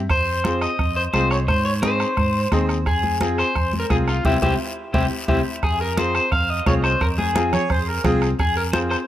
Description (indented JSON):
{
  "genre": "latin, cumbia",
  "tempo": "174 BPM",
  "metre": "4/4",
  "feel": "straight",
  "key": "F minor",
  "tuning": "A4 = 440 Hz",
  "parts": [
    { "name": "fingered electric bass", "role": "bass", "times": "0.0-8.9 s", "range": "C2 to Ab2", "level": "-24 LUFS", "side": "equal", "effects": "none" },
    { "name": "electric guitar at the edge of break-up", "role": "melody", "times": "0.1-9.0 s", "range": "E4 to F5", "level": "-22 LUFS", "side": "left 1 dB", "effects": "spring reverb, slapback echo" },
    { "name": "bombo", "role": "percussion", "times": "0.1-9.1 s", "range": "none", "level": "-25 LUFS", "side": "right 1 dB", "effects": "none" },
    { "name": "congas", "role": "percussion", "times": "0.1-8.9 s", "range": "none", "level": "-27 LUFS", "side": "left 1 dB", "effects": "none" },
    { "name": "guiro", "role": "percussion", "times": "0.1-9.1 s", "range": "none", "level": "-36 LUFS", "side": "left 5 dB", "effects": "none" },
    { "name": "bright upright piano", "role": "accompaniment", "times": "0.4-9.0 s", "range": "C4 to Ab4", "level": "-25 LUFS", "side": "left 2 dB", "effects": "none" },
    { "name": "accordion", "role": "second line", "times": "7.5-8.3 s", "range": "Ab4 to Db5", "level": "-26 LUFS", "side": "right 3 dB", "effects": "none" }
  ],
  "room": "light reverb",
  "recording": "none",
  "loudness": "-18 LUFS",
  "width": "side -12 dB against mid",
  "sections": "0.0-5.6 A section; 5.6-9.1 B section",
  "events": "band accent 4.2-5.6",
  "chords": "0.1 Fm; 1.5 Ab; 2.9 Fm; 4.2 C; 5.6 Fm"
}